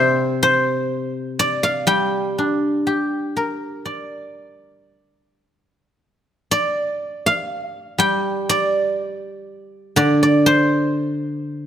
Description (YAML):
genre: chinese traditional, Chinese solo plucked strings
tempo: 61 BPM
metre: 4/4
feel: rubato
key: G yu mode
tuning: A4 = 440 Hz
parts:
  - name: guzheng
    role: solo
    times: 0.0-11.7 s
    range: C3 to G5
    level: -17 LUFS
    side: equal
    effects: none
room: light reverb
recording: close, detailed microphones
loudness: -17 LUFS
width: side -9 dB against mid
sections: 0.0-6.0 A section; 6.0-11.7 B section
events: none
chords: none